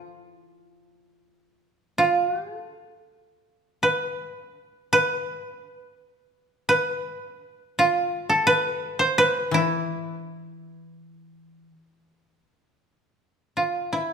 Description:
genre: japanese traditional, Japanese chamber music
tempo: 83 BPM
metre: 4/4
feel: uneven beats, rubato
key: E miyako bushi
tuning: A4 = 440 Hz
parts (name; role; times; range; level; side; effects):
- koto; melody; 0.0-14.1 s; E4 to C5; -21 LUFS; right 1 dB; none
- koto; accompaniment; 0.0-1.6, 9.5-11.7 s; E3 to F3; -30 LUFS; left 6 dB; none
room: moderate recital hall reverb, RT60 1.6 s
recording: minimal, uncompressed stereo recording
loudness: -21 LUFS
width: side -6 dB against mid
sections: 0.0-12.8 A section; 12.8-14.1 B section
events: none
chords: none

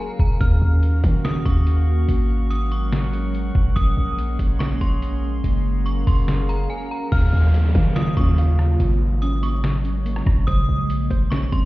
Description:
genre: hip hop, atmospheric cloud-rap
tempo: 143 BPM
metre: 4/4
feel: half-time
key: unclear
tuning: A4 = 441 Hz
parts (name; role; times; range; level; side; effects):
- metallic FM bell; melody; 0.0-11.7 s; Ab5 to F6; -32 LUFS; equal; chorus, phaser, tape echo
- glassy FM pad; sustained chords; 0.0-11.7 s; Db3 to F5; -28 LUFS; equal; ensemble chorus, built-in reverb, sidechain pumping
- warm 808-style bass; bass; 0.2-11.7 s; Gb1 to Eb3; -20 LUFS; equal; none
- trip hop sampler-style drum kit; drums; 0.2-11.6 s; hi-hat, kick drum, rim click, snare drum; -20 LUFS; equal; none
- drifting glass-harmonics texture; texture; 0.9-7.1 s; Gb4 to Db6; -39 LUFS; left 1 dB; chorus, built-in reverb
- muted felt-like synth keys; arpeggios; 7.1-11.7 s; Bb3 to F5; -32 LUFS; right 2 dB; chorus, tape echo
- downlifter; sound effects; 7.1-10.5 s; none; -35 LUFS; equal; none
room: little or no reverb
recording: heard muffled through a wall, stone room reverb, EQ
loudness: -17 LUFS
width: side -18 dB against mid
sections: 0.0-7.1 A section; 7.1-11.7 B section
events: break 0.0-0.4, 6.7-7.1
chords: 0.4 Ebm9; 2.1 Ab9sus4; 3.8 Bbm11; 5.4 Gbmaj7; 7.1 Ebm9; 8.8 Ab9sus4; 10.5 Bbm11

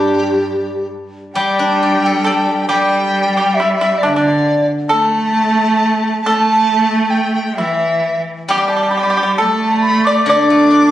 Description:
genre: chinese traditional, Chinese chamber ensemble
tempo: 67 BPM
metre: 2/4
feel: rubato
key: unclear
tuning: A4 = 440 Hz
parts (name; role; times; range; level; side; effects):
- large dizi; melody; 0.0-10.9 s; G4 to D6; -16 LUFS; equal; none
- clear cello; second line; 0.0-10.9 s; G2 to D4; -17 LUFS; right 2 dB; none
- pipa; second line; 0.0-10.9 s; G3 to D5; -18 LUFS; equal; none
- steel-string zither; accompaniment; 0.0-5.3, 8.5-10.9 s; D3 to D5; -19 LUFS; left 2 dB; none
room: moderate recital hall reverb, RT60 1.8 s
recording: recorded on a phone in the room, studio reverb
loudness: -12 LUFS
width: side -12 dB against mid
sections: 0.0-1.4 A section; 1.4-10.9 B section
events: none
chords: none

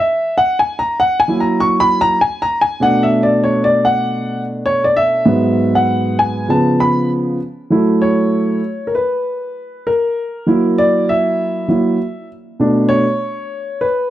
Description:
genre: hip hop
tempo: 98 BPM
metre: 4/4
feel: swing 59% on 16ths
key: unclear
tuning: A4 = 440 Hz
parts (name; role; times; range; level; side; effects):
- dark grand piano; solo; 0.0-14.1 s; G#2 to C#6; -13 LUFS; equal; none
room: little or no reverb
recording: dry, close 1970s-style studio recording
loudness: -13 LUFS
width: side -13 dB against mid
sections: 0.0-7.7 A section; 7.7-14.1 B section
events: grand piano solo 0.0-7.7, 7.7-14.1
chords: 0.4 F#7; 2.8 Bm7; 5.3 G#m7; 6.5 C#aug7; 7.7 F#m7; 10.2 F#aug7; 12.6 Bm9

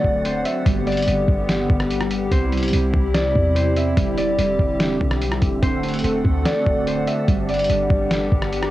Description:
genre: hip hop, atmospheric cloud-rap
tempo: 145 BPM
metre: 4/4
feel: half-time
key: G major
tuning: A4 = 440 Hz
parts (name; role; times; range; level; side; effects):
- Celtic harp; melody; 0.0-8.7 s; C5 to E5; -24 LUFS; equal; tape echo
- hollow soft pad; sustained chords; 0.0-8.7 s; C3 to F#5; -23 LUFS; equal; chorus, sidechain pumping, cassette tape
- warbly dusty pluck; arpeggios; 0.0-8.7 s; G3 to C4; -30 LUFS; right 9 dB; chorus, phaser, cassette tape, tape echo
- clean 808-style bass; bass; 0.0-8.7 s; D1 to E2; -23 LUFS; equal; none
- lo-fi sampler-style drum kit; drums; 0.0-8.7 s; hi-hat, kick drum, rim click, snare drum; -23 LUFS; equal; overdrive, cassette tape
- wind-like tuned noise texture; texture; 0.0-8.7 s; B3 to B5; -33 LUFS; equal; built-in reverb, cassette tape
room: light reverb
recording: home recording on cassette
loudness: -17 LUFS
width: side -15 dB against mid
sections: 0.0-8.7 A section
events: none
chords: 0.0 D7; 0.7 Gmaj7; 2.3 Cmaj7; 4.0 Em7; 5.6 D7; 7.3 Gmaj7

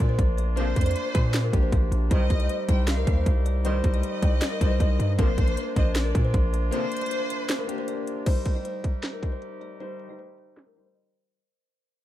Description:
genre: hip hop, trap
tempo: 156 BPM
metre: 4/4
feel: half-time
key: C minor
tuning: A4 = 435 Hz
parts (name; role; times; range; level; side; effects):
- kalimba; melody; 0.0-11.3 s; Bb4 to Eb5; -33 LUFS; left 2 dB; ping-pong delay
- warm studio violin section; second line; 0.0-7.8 s; C5 to G5; -34 LUFS; right 1 dB; ping-pong delay
- warm concert grand piano; accompaniment; 0.0-11.4 s; G3 to G5; -33 LUFS; left 3 dB; none
- warm woodwind section; sustained chords; 0.0-11.3 s; C3 to G4; -40 LUFS; right 2 dB; none
- hard-hitting 808-style bass; bass; 0.0-6.7 s; Bb1 to Bb2; -24 LUFS; equal; none
- trap drum kit; drums; 0.0-10.9 s; crash cymbal, handclaps, hi-hat, kick drum, snare drum; -24 LUFS; equal; none
- mellow brass ensemble; stabs; 0.6-6.8 s; G2 to F3; -37 LUFS; right 5 dB; none
room: studio ambience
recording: dark, warm production, low-pass filter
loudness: -22 LUFS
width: side -13 dB against mid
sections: 0.0-8.3 A section; 8.3-11.3 B section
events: break 6.7-8.3, 11.0-11.3; fade-out 8.3-11.3; filter sweep 8.3-11.3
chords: 0.0 Bbadd9; 2.1 Cm; 5.2 Bbadd9; 8.3 Cm

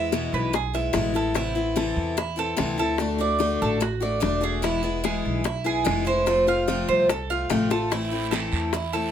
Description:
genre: latin, Cuban son and guajira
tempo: 146 BPM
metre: 4/4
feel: straight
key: A minor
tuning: A4 = 441 Hz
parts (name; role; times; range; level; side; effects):
- picked steel-string acoustic guitar; accompaniment; 0.0-9.1 s; B2 to F#4; -26 LUFS; left 4 dB; none
- Cuban tres; arpeggios; 0.0-9.1 s; E4 to F5; -26 LUFS; right 4 dB; none
- upright bass; bass; 0.0-9.1 s; E1 to E2; -30 LUFS; right 1 dB; none
- bongos; percussion; 0.1-8.9 s; none; -29 LUFS; left 6 dB; none
- guiro; percussion; 7.9-9.1 s; none; -35 LUFS; right 7 dB; none
room: moderate studio reverb, RT60 0.5 s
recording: none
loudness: -22 LUFS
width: side -9 dB against mid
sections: 0.0-9.1 A section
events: drum fill 7.7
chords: 0.0 E; 1.4 Amadd9; 3.0 D; 4.6 E; 6.3 F; 7.9 Am

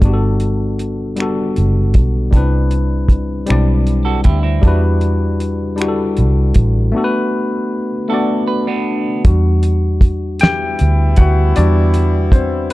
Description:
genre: slow six-eight R&B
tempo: 52 BPM (dotted quarters)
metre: 6/8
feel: straight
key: E minor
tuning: A4 = 444 Hz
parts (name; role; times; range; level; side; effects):
- barky tine electric piano; accompaniment; 0.0-12.7 s; G3 to G5; -18 LUFS; left 2 dB; none
- vintage muted fingered electric bass; bass; 0.0-12.7 s; F#1 to E2; -15 LUFS; equal; none
- cloth-damped thuddy drum kit; drums; 0.0-12.7 s; finger snaps, hi-hat, kick drum, snare drum; -13 LUFS; equal; none
- semi-hollow electric guitar; second line; 4.0-9.2 s; B3 to B4; -24 LUFS; right 6 dB; none
- warm horn section; stabs; 10.4-12.7 s; G3 to E4; -25 LUFS; right 1 dB; tape echo
room: small room ambience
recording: dark, warm production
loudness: -13 LUFS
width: side -18 dB against mid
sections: 0.0-9.2 A section; 9.2-12.7 B section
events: break 6.9-9.2; tine electric piano solo 9.2-12.7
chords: 0.0 Gmaj9; 2.3 Cmaj9; 4.6 Em7; 6.9 Bm7; 9.2 Em9

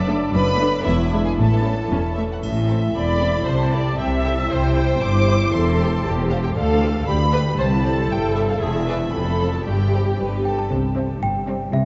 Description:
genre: cinematic, playful, whimsical film cue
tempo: 116 BPM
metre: 2/4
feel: straight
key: A minor, C major from 6.6 s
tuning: A4 = 444 Hz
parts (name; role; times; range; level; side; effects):
- warm studio violin section; melody; 0.0-11.7 s; E5 to D6; -30 LUFS; equal; none
- rich studio violin section; second line; 0.0-11.7 s; C4 to D5; -34 LUFS; equal; none
- concert harp; arpeggios; 0.0-11.8 s; E2 to E5; -28 LUFS; equal; none
- rich studio cello section; bass; 0.0-11.8 s; C2 to C3; -26 LUFS; equal; none
- rich studio double bass section; bass; 0.0-11.8 s; E1 to D2; -26 LUFS; equal; none
- rich studio viola section; accompaniment; 0.1-11.7 s; G#3 to E5; -27 LUFS; equal; none
- triangle; percussion; 2.4-3.4 s; none; -48 LUFS; equal; none
- trough xylophone with soft rubber mallets; melody; 10.5-11.8 s; E5 to A5; -29 LUFS; equal; none
room: wet cathedral reverb, RT60 6.0 s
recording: in a vast, echoing space, nothing above 7.7 kHz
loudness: -20 LUFS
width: mono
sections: 0.0-2.4 A section; 2.4-10.7 B section; 10.7-11.8 C section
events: none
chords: 0.3 Bm7/F#; 0.8 E7; 1.4 A; 2.4 Am; 3.5 Am/C; 4.5 C; 5.5 C/E; 6.6 G7/D; 7.6 C; 8.6 E7; 9.1 F; 9.7 Gsus4; 10.2 G; 10.7 C

